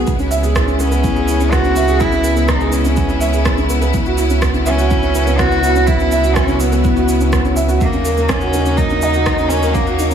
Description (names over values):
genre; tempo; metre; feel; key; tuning
piano and strings electronica; 124 BPM; 4/4; straight; C# dorian; A4 = 439 Hz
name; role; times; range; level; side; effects
warm studio string section; sustained chords; 0.0-10.1 s; C#3 to E4; -23 LUFS; left 2 dB; sidechain pumping, shimmer reverb
felt-muted upright piano; riff; 0.0-10.1 s; A#3 to E5; -18 LUFS; equal; tape echo, shimmer reverb
warm sub bass; bass; 0.0-10.1 s; C#2 to D#2; -18 LUFS; right 2 dB; sidechain pumping
electronic kick drum; drums; 0.1-9.8 s; none; -19 LUFS; right 1 dB; none
electronic shaker and rim click; drums; 0.1-10.1 s; none; -25 LUFS; right 1 dB; overdrive
warm cello; melody; 0.8-10.1 s; A#3 to F#4; -20 LUFS; equal; tape echo, shimmer reverb
room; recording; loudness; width
light reverb, small room reverb; small room ambience; -12 LUFS; side -8 dB against mid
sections
0.0-10.1 A section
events
none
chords
0.1 C#m7; 3.9 F#7sus4/C#; 7.8 D#m7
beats
| 0.07 0.55 1.04 1.52 | 2.00 2.49 2.97 3.46 | 3.94 4.42 4.91 5.39 | 5.88 6.36 6.84 7.33 | 7.81 8.29 8.78 9.26 | 9.75